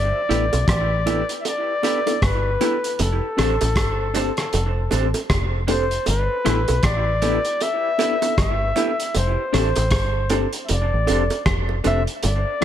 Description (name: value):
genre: lovers rock reggae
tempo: 78 BPM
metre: 4/4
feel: swing 60% on 16ths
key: unclear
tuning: A4 = 440 Hz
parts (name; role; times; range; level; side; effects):
- breathy flugelhorn; melody; 0.0-12.6 s; A4 to E5; -24 LUFS; left 2 dB; tape echo
- deep dub fingered electric bass; bass; 0.0-12.4 s; F1 to B1; -22 LUFS; equal; none
- mellow tine electric piano; accompaniment; 0.3-12.6 s; B3 to A4; -28 LUFS; left 3 dB; medium stereo tremolo
- electric guitar through a small old amp; stabs; 0.3-12.6 s; D4 to C5; -28 LUFS; right 5 dB; tremolo, tape echo
- cloth-damped thuddy drum kit; drums; 0.3-12.6 s; hi-hat, kick drum, rim click; -24 LUFS; equal; gated reverb
- bongos; percussion; 0.5-12.4 s; none; -29 LUFS; right 5 dB; none
room: light reverb, small room ambience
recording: none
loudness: -18 LUFS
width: side -10 dB against mid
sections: 0.0-12.6 A section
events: none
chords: 0.0 G6; 3.0 F6; 6.1 G6; 9.2 F6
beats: 0.68 1.45 2.22 | 2.99 3.76 4.53 5.30 | 6.07 6.84 7.61 8.38 | 9.15 9.92 10.69 11.46 | 12.23